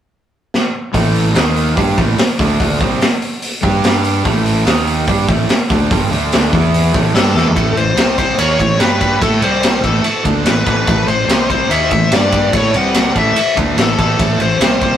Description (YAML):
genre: hard rock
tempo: 145 BPM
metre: 4/4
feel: straight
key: unclear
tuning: A4 = 440 Hz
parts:
  - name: raw garage drum kit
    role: drums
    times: 0.5-14.9 s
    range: hi-hat, kick drum, ride cymbal, snare drum, toms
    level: -16 LUFS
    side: equal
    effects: none
  - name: cranked stack guitar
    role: riff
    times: 0.9-15.0 s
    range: G2 to A4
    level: -20 LUFS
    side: right 6 dB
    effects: overdrive
  - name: sludgy distorted guitar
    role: riff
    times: 0.9-15.0 s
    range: G2 to A4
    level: -22 LUFS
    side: left 6 dB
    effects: overdrive
  - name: fuzz fingered electric bass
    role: bass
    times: 0.9-15.0 s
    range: G1 to A2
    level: -18 LUFS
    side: equal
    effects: overdrive
  - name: biting lead guitar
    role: melody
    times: 7.2-15.0 s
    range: A4 to F#5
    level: -16 LUFS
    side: left 3 dB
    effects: overdrive, digital delay
room: light reverb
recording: rough rehearsal-room recording, tube saturation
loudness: -11 LUFS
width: side -10 dB against mid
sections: 0.9-7.6 A section; 7.6-15.0 B section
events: drum fill 0.5-0.9, 7.3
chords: 0.0 N.C.; 0.9 A5; 1.4 D#5; 1.8 A5; 2.4 D5; 2.8 C5; 3.6 G5; 4.2 A5; 4.7 D#5; 5.1 A5; 6.1 D5; 6.5 E5; 6.9 A5; 8.0 C5; 8.4 A; 8.8 G5; 9.2 A5; 9.4 C5; 9.8 A5; 11.3 C5; 11.7 A5; 12.1 G5; 12.5 A; 12.7 C5; 13.2 A5